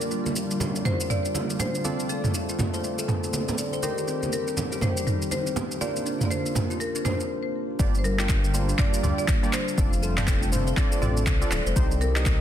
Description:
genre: afro house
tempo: 121 BPM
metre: 4/4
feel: swing 60% on 16ths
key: unclear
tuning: A4 = 435 Hz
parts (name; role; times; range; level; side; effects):
- marimba with hard mallets; melody; 0.0-12.4 s; A4 to D5; -32 LUFS; left 3 dB; ping-pong delay
- warm analog pad; sustained chords; 0.0-12.4 s; D3 to G4; -35 LUFS; left 1 dB; chorus, sidechain pumping
- warm analog keys; stabs; 0.0-12.4 s; Bb3 to G5; -33 LUFS; right 3 dB; chorus, sidechain pumping, low-pass filter, ping-pong delay
- deep house drum kit; drums; 0.0-12.4 s; handclaps, shaker, toms; -29 LUFS; right 1 dB; small room ambience
- kalimba; arpeggios; 0.1-12.1 s; G3 to F5; -33 LUFS; left 2 dB; sidechain pumping, low-pass filter, ping-pong delay
- congas; percussion; 0.3-7.2 s; none; -32 LUFS; right 3 dB; none
- dark detuned saw bass; bass; 7.8-12.4 s; D1 to D2; -26 LUFS; equal; sidechain pumping
- electronic kick drum; drums; 7.8-12.4 s; none; -24 LUFS; equal; small room ambience
room: light reverb, digital ambience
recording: dense, heavily limited modern master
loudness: -23 LUFS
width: side -10 dB against mid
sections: 0.0-7.8 A section; 7.8-12.4 B section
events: filter sweep on kalimba 0.0-7.8; break 7.3-7.8; drop 7.8-12.4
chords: 0.0 Gm7; 1.8 F6; 3.8 Cm; 5.8 Bbadd9; 7.8 Gm7; 9.8 F6; 11.8 Cm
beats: 0.36 0.85 1.35 | 1.84 2.34 2.84 3.33 | 3.83 4.32 4.82 5.32 | 5.81 6.31 6.80 7.30 | 7.79 8.29 8.79 9.28 | 9.78 10.27 10.77 11.27 | 11.76 12.26

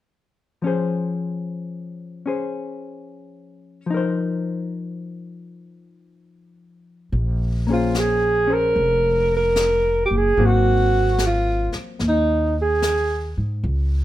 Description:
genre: jazz ballad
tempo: 74 BPM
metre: 4/4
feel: swing 67% on 8ths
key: Bb minor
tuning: A4 = 440 Hz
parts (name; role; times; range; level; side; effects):
- hollow-body jazz guitar; accompaniment; 0.6-13.6 s; F3 to C5; -26 LUFS; left 4 dB; none
- upright bass; bass; 7.1-14.0 s; F1 to Ab2; -22 LUFS; equal; none
- jazz brush drum kit; drums; 7.1-14.0 s; brushed snare drum, hi-hat, snare drum; -31 LUFS; left 3 dB; none
- breathy alto saxophone; melody; 7.7-13.4 s; Eb4 to Bb4; -19 LUFS; right 2 dB; none
room: light reverb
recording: none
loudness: -18 LUFS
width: side -14 dB against mid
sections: 0.6-7.1 A section; 7.1-14.0 B section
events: none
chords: 0.6 Dbmaj7/F; 3.9 F7sus4; 7.1 Bbm9; 10.4 Ab9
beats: | 0.63 1.44 2.26 3.07 | 3.88 4.70 5.51 6.32 | 7.13 7.95 8.76 9.57 | 10.38 11.20 12.01 12.82 | 13.64

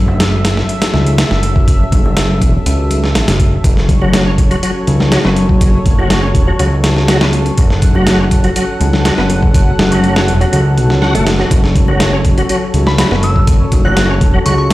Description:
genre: breakbeat, breaks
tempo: 122 BPM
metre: 4/4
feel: straight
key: F# minor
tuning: A4 = 441 Hz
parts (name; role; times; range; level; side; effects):
- lush unison pad; sustained chords; 0.0-14.7 s; F#3 to F#5; -20 LUFS; left 1 dB; chorus, vintage 12-bit sampler grit, sidechain pumping
- fat analog bass; bass; 0.0-14.7 s; E1 to C#2; -13 LUFS; equal; tube saturation
- congas; percussion; 0.1-14.7 s; none; -22 LUFS; left 2 dB; none
- dusty soul sampler-style drum kit; drums; 0.2-14.7 s; hi-hat, kick drum, snare drum; -13 LUFS; equal; none
- bright tonewheel organ; riff; 4.0-14.5 s; F#3 to F#4; -18 LUFS; equal; overdrive, chorus vibrato, fast rotary speaker, vintage 12-bit sampler grit, tape echo
- glassy synth bell; melody; 12.9-14.7 s; B5 to F#6; -19 LUFS; equal; chorus, phaser, old record sound, tape echo
room: light reverb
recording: played on a big sound system in a bare room, large studio reverb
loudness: -9 LUFS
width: side -17 dB against mid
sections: 0.0-14.7 A section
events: none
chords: 0.0 F#m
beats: 0.20 0.69 1.19 | 1.68 2.17 2.66 3.15 | 3.64 4.14 4.63 5.12 | 5.61 6.10 6.59 7.09 | 7.58 8.07 8.56 9.05 | 9.54 10.04 10.53 11.02 | 11.51 12.01 12.50 12.99 | 13.48 13.97 14.46

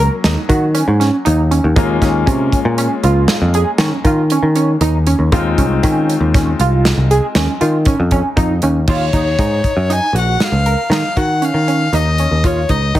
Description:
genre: progressive instrumental, band music in an uneven meter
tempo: 118 BPM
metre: 7/4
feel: straight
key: Eb dorian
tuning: A4 = 440 Hz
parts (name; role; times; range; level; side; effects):
- bright grand piano; accompaniment; 0.0-8.8 s; Gb3 to Gb4; -22 LUFS; left 5 dB; none
- tight sequenced synth; arpeggios; 0.0-13.0 s; Db4 to Bb4; -19 LUFS; right 3 dB; chorus
- picked electric bass; bass; 0.0-13.0 s; Bb1 to Eb3; -15 LUFS; equal; none
- natural country drum kit; drums; 0.2-13.0 s; crash cymbal, hi-hat, kick drum, snare drum; -17 LUFS; equal; none
- warm violin; melody; 8.9-13.0 s; Db5 to Ab5; -18 LUFS; left 2 dB; none
room: light reverb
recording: heavily compressed radio sound, multiband compression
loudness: -12 LUFS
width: side -14 dB against mid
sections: 0.0-8.9 A section; 8.9-13.0 B section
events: none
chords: 0.0 Ebm7; 1.8 Db69; 5.3 Dbmaj7; 8.9 Ebm7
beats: 0.24 0.75 1.25 | 1.76 2.27 2.78 3.29 3.80 4.30 4.81 | 5.32 5.83 6.34 6.85 7.35 7.86 8.37 | 8.88 9.39 9.90 10.41 10.92 11.43 11.94 | 12.45 12.96

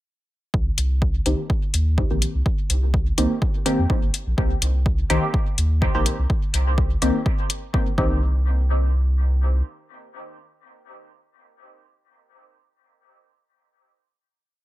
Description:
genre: dub techno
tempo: 125 BPM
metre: 4/4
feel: swing 54% on 16ths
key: C minor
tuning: A4 = 440 Hz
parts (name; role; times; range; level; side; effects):
- warm sub bass; bass; 0.5-9.6 s; G1 to F2; -20 LUFS; equal; sidechain pumping
- electronic kick drum; drums; 0.5-8.1 s; none; -23 LUFS; equal; overdrive
- electronic hi-hat; drums; 0.8-7.6 s; none; -25 LUFS; left 4 dB; none
- filtered dub chord stab; stabs; 1.3-12.4 s; Eb3 to G4; -25 LUFS; equal; chorus, phaser, sidechain pumping, dub echo
room: digital ambience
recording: echo-heavy mix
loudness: -19 LUFS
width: side -16 dB against mid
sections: 0.5-8.2 groove; 8.2-12.1 final hit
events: none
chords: 0.5 Cm7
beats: | 0.54 1.02 1.50 1.98 | 2.46 2.94 3.42 3.90 | 4.38 4.86 5.34 5.82 | 6.30 6.78 7.26 7.74 | 8.22 8.70 9.18 9.66 | 10.14 10.62 11.10 11.58

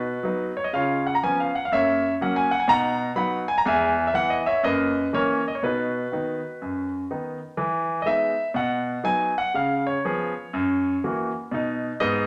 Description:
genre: jazz, stride piano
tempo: 122 BPM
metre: 4/4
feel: swing 65% on 8ths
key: B major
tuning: A4 = 440 Hz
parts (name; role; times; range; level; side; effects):
- clear concert grand piano; solo; 0.0-12.3 s; E2 to B5; -24 LUFS; equal; none
room: wet large studio reverb, RT60 1.1 s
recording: none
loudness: -24 LUFS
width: mono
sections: 0.0-7.6 A section; 7.6-12.3 B section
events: none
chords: 0.0 B; 0.7 C#7; 1.7 F#7; 2.7 B; 3.7 E; 4.6 F#7; 5.6 B; 7.6 Emaj7; 8.6 B; 9.5 C#7; 10.5 F#7; 11.5 B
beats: 0.23 0.72 1.21 | 1.70 2.19 2.68 3.17 | 3.66 4.15 4.64 5.13 | 5.62 6.11 6.60 7.09 | 7.58 8.07 8.56 9.05 | 9.54 10.03 10.52 11.02 | 11.51 12.00

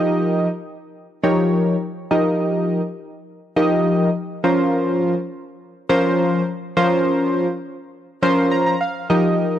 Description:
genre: pop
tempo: 103 BPM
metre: 4/4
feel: straight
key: unclear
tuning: A4 = 442 Hz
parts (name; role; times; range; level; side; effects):
- warm analog keys; solo; 0.0-9.6 s; F3 to C6; -17 LUFS; equal; chorus
room: moderate scoring stage reverb, RT60 1.9 s, digital ambience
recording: dry, gritty hardware recording, transformer saturation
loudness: -17 LUFS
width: side -11 dB against mid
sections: 0.0-9.6 A section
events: synth keys fill 7.9-9.1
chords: 0.0 Eb/F; 4.4 Bbmadd9/F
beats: 0.36 0.94 1.53 | 2.11 2.69 3.27 3.86 | 4.44 5.02 5.60 6.19 | 6.77 7.35 7.93 8.52 | 9.10

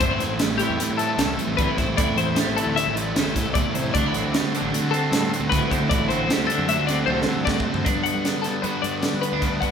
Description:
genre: math rock and midwest emo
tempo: 153 BPM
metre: 5/4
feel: straight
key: G major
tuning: A4 = 440 Hz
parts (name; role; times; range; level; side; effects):
- clean electric guitar; accompaniment; 0.0-9.7 s; D2 to F#4; -28 LUFS; right 3 dB; none
- twelve-string electric guitar; arpeggios; 0.0-9.7 s; G4 to F#5; -26 LUFS; left 6 dB; tremolo
- overdriven semi-hollow guitar; riff; 0.0-9.7 s; G2 to F#4; -25 LUFS; right 1 dB; none
- fuzz picked electric bass; bass; 0.0-9.7 s; G1 to G3; -30 LUFS; equal; overdrive
- crisp fusion drum kit; drums; 0.0-9.7 s; hi-hat, kick drum, snare drum, toms; -26 LUFS; right 1 dB; none
room: moderate large studio reverb, RT60 1.2 s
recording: band playing live in one room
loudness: -20 LUFS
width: side -7 dB against mid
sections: 0.0-7.9 A section; 7.9-9.7 B section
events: drum fill 7.1-7.9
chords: 0.0 Am7; 3.9 D9sus4; 7.9 Gmaj7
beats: | 0.02 0.41 0.80 1.20 1.59 | 1.98 2.37 2.76 3.16 3.55 | 3.94 4.33 4.72 5.12 5.51 | 5.90 6.29 6.68 7.08 7.47 | 7.86 8.25 8.64 9.03 9.42

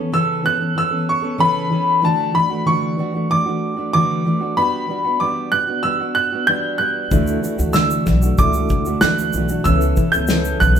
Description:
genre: acoustic pop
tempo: 94 BPM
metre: 4/4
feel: straight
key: D major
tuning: A4 = 440 Hz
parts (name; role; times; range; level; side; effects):
- bright upright piano; melody; 0.0-10.8 s; A5 to G6; -19 LUFS; right 1 dB; none
- fingerpicked steel-string acoustic guitar; accompaniment; 0.0-10.8 s; C#3 to A4; -21 LUFS; right 1 dB; none
- mellow reed electric piano; accompaniment; 7.1-10.8 s; C#4 to E5; -27 LUFS; left 3 dB; fast tremolo
- upright bass; bass; 7.1-10.8 s; B1 to D2; -20 LUFS; equal; none
- unplugged drum kit; drums; 7.1-10.8 s; kick drum, shaker, snare drum; -20 LUFS; left 1 dB; none
room: moderate studio reverb, RT60 0.7 s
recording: band playing live in one room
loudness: -16 LUFS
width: side -8 dB against mid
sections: 0.0-10.8 A section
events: none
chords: 0.0 Aadd9/C#; 2.0 Dadd9; 4.6 Gmaj7; 7.1 Dadd9; 9.7 Aadd9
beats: 0.13 0.77 1.40 | 2.04 2.67 3.31 3.94 | 4.58 5.21 5.85 6.48 | 7.12 7.75 8.39 9.02 | 9.66 10.29

